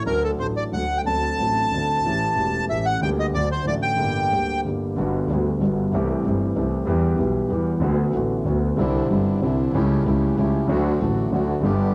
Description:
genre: tango.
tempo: 187 BPM.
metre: 3/4.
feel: rubato.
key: G harmonic minor, G major from 5.0 s.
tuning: A4 = 440 Hz.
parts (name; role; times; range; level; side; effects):
bandoneon; melody; 0.0-4.6 s; A4 to A5; -25 LUFS; equal; cassette tape.
warm concert grand piano; accompaniment; 0.0-11.9 s; E1 to A4; -24 LUFS; equal; cassette tape.
clear double bass; bass; 0.0-11.9 s; E1 to E2; -29 LUFS; equal; none.
bandoneon; stabs; 8.8-11.9 s; A3 to G4; -34 LUFS; equal; cassette tape.
room: moderate studio ambience, RT60 0.5 s.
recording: home recording on cassette.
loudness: -22 LUFS.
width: mono.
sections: 0.0-5.0 A section; 5.0-11.9 B section.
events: none.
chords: 0.1 D; 1.1 D7; 2.0 A7; 3.0 Gm/D; 3.3 D; 4.0 Gm; 5.0 Gmaj7; 5.9 C6; 6.9 Em; 7.8 D6; 8.8 Cadd9; 9.7 A7/C#; 10.7 D.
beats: | 0.06 0.39 0.72 | 1.05 1.39 1.72 | 2.04 2.36 2.69 | 3.01 3.33 3.66 | 3.98 4.31 4.64 | 4.97 5.29 5.61 | 5.93 6.25 6.56 | 6.88 7.19 7.50 | 7.82 8.13 8.46 | 8.78 9.10 9.42 | 9.74 10.06 10.37 | 10.69 11.00 11.32 | 11.63.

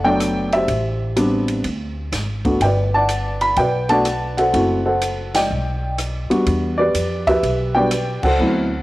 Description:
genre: jazz piano trio.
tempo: 124 BPM.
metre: 4/4.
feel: swing 67% on 8ths.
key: unclear.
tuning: A4 = 440 Hz.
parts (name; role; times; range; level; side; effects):
dark upright piano; melody; 0.0-8.8 s; F#3 to B5; -18 LUFS; equal; cassette tape.
upright bass; bass; 0.0-8.8 s; F#1 to F2; -24 LUFS; equal; none.
open jazz drum kit; drums; 0.2-8.3 s; crash cymbal, hi-hat, kick drum, ride cymbal, rim click, snare drum; -28 LUFS; equal; cassette tape.
room: light reverb, studio reverb.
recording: home recording on cassette.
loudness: -16 LUFS.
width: side -18 dB against mid.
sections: 0.0-8.8 A section.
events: band accent 5.3, 8.2.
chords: 0.0 Bm7; 0.7 Am11; 1.6 N.C.; 2.6 Gmaj9; 4.5 F#m7b5; 5.5 B; 6.5 Em7.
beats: 0.20 | 0.68 1.16 1.64 2.12 | 2.61 3.09 3.57 4.05 | 4.54 5.02 5.50 5.98 | 6.46 6.95 7.43 7.91 | 8.39.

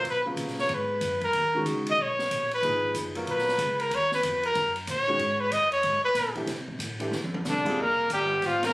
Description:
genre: modal jazz.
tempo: 186 BPM.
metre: 4/4.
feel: swing 63% on 8ths.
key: G# dorian.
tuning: A4 = 439 Hz.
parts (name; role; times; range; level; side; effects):
warm trumpet; melody; 0.0-8.7 s; D4 to D#5; -24 LUFS; equal; none.
warm upright piano; accompaniment; 0.0-7.8 s; A#2 to A#4; -32 LUFS; equal; none.
upright bass; bass; 0.0-8.7 s; F1 to C3; -37 LUFS; equal; none.
open jazz drum kit; drums; 0.0-8.7 s; crash cymbal, hi-hat, kick drum, ride cymbal, snare drum, toms; -36 LUFS; equal; none.
mellow tenor saxophone; second line; 7.5-8.7 s; D3 to Bb3; -31 LUFS; left 1 dB; none.
room: light reverb.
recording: recorded on a phone in the room, studio reverb.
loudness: -24 LUFS.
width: side -20 dB against mid.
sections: 0.0-7.8 A section.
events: trumpet solo 0.0-7.8; drum fill 7.1-7.5.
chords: 0.0 G#m9; 6.5 C69; 7.8 Fsus4.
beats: | 0.05 0.37 0.69 1.02 | 1.34 1.66 1.98 2.30 | 2.62 2.95 3.27 3.59 | 3.91 4.24 4.56 4.88 | 5.20 5.52 5.85 6.17 | 6.49 6.81 7.13 7.46 | 7.78 8.10 8.43.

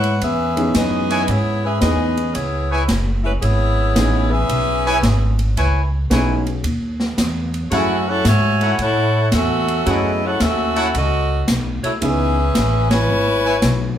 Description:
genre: jazz, big band swing.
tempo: 112 BPM.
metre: 4/4.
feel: swing 67% on 8ths.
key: C# minor.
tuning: A4 = 440 Hz.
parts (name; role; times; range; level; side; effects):
bright saxophone section; melody; 0.0-14.0 s; G#3 to G#5; -20 LUFS; left 1 dB; plate reverb.
upright bass; bass; 0.0-14.0 s; F#1 to A2; -19 LUFS; equal; none.
swinging big-band drum kit; drums; 0.0-13.8 s; hi-hat, ride cymbal, snare drum; -24 LUFS; equal; none.
warm concert grand piano; accompaniment; 0.6-12.3 s; E3 to G#4; -22 LUFS; right 1 dB; none.
clear trumpet section; stabs; 1.1-13.6 s; E4 to G#5; -22 LUFS; equal; none.
room: wet club reverb, RT60 0.6 s.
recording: heard from further back in the room.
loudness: -15 LUFS.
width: side -10 dB against mid.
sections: 0.0-14.0 A section.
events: band accent 12.8.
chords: 0.0 C#m7; 7.7 F#m7; 12.0 C#m7.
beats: 0.20 0.74 | 1.28 1.81 2.35 2.89 | 3.42 3.96 4.50 5.03 | 5.57 6.11 6.64 7.18 | 7.72 8.25 8.79 9.33 | 9.86 10.40 10.94 11.47 | 12.01 12.55 13.09 13.62.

